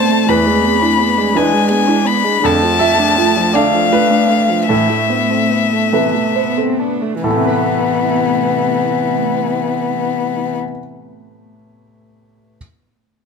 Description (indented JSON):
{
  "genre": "neoclassical piano and strings",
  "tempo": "45-57 BPM (dotted quarters)",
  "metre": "6/8",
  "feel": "rubato",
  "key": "A minor",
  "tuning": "A4 = 439 Hz",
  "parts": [
    { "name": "rich violin", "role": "melody", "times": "0.0-10.6 s", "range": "B3 to B5", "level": "-16 LUFS", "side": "left 8 dB", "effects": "none" },
    { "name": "dark cello", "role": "second line", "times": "0.0-10.6 s", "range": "C3 to D4", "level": "-22 LUFS", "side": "right 5 dB", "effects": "none" },
    { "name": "bright grand piano", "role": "accompaniment", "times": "0.0-12.6 s", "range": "E2 to E5", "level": "-19 LUFS", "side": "right 1 dB", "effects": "none" },
    { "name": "dark viola", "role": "accompaniment", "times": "0.0-10.6 s", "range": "D3 to D4", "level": "-22 LUFS", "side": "right 3 dB", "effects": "none" },
    { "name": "ethereal airy pad", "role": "sustained chords", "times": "0.0-10.6 s", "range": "A3 to D5", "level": "-24 LUFS", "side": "left 1 dB", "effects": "ensemble chorus, built-in reverb, phaser" },
    { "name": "glassy wavetable pluck", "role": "arpeggios", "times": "0.0-6.9 s", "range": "D4 to A5", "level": "-22 LUFS", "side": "right 5 dB", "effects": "chorus, phaser, slapback echo" }
  ],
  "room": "moderate large studio reverb, RT60 1.3 s",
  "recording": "close, detailed microphones",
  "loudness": "-12 LUFS",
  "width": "side -5 dB against mid",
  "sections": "0.0-7.2 A section; 7.2-12.6 B section",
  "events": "slowing down 1.4-7.2",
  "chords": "0.3 E7; 2.4 Dm/F; 4.7 Amadd9"
}